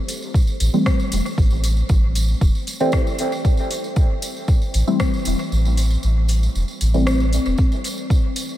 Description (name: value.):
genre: dub techno.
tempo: 116 BPM.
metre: 4/4.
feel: straight.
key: A minor.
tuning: A4 = 440 Hz.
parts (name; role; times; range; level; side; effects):
soft vintage rhythm box; drums; 0.1-8.5 s; hi-hat, rim click; -31 LUFS; left 1 dB; overdrive, dub echo.
tambourine; percussion; 0.1-8.6 s; none; -32 LUFS; right 2 dB; none.
electronic kick drum; drums; 0.3-8.2 s; none; -17 LUFS; equal; none.
soft dub sub bass; bass; 0.6-7.5 s; E1 to A1; -18 LUFS; equal; sidechain pumping.
deep mellow chord stab; stabs; 0.7-7.2 s; E3 to C4; -24 LUFS; left 1 dB; chorus, phaser, sidechain pumping, dub echo.
room: light reverb, digital ambience.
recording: none.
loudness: -17 LUFS.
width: side -14 dB against mid.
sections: 0.0-8.6 A section.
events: kick drops out 5.5-7.6.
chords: 0.0 Am7.